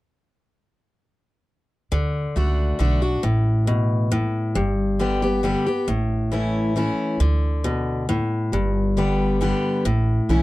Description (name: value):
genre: bluegrass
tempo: 136 BPM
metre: 3/4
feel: straight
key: D major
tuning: A4 = 440 Hz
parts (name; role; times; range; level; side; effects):
- picked steel-string acoustic guitar; accompaniment; 1.9-10.4 s; G2 to G4; -22 LUFS; left 1 dB; none
- upright bass; bass; 1.9-10.4 s; G1 to D2; -22 LUFS; right 1 dB; none
room: light reverb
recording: dry, close 1970s-style studio recording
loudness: -19 LUFS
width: side -18 dB against mid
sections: 1.9-10.4 A section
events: none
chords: 1.9 D; 3.2 Asus2; 4.6 G; 5.9 A; 7.2 D5; 8.5 G; 9.8 A